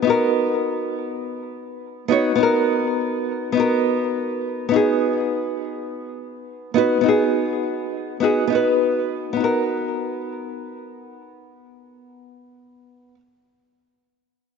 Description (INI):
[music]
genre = chillout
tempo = 103 BPM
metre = 4/4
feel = swing 55% on 16ths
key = unclear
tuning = A4 = 440 Hz
[part]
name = nylon-string guitar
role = accompaniment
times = 0.0-13.2 s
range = B3 to C#5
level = -19 LUFS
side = equal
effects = auto-pan, ping-pong delay
[sound]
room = moderate lush hall reverb, RT60 2.7 s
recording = nothing above 7.8 kHz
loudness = -19 LUFS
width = side -5 dB against mid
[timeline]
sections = 0.0-9.4 A section; 9.4-11.7 B section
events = none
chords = 0.1 Bmaj7; 4.7 B6; 9.4 Bmaj7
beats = | 0.06 0.64 1.22 1.81 | 2.39 2.97 3.56 4.14 | 4.72 5.30 5.88 6.47 | 7.05 7.63 8.21 8.80 | 9.38 9.96 10.54 11.13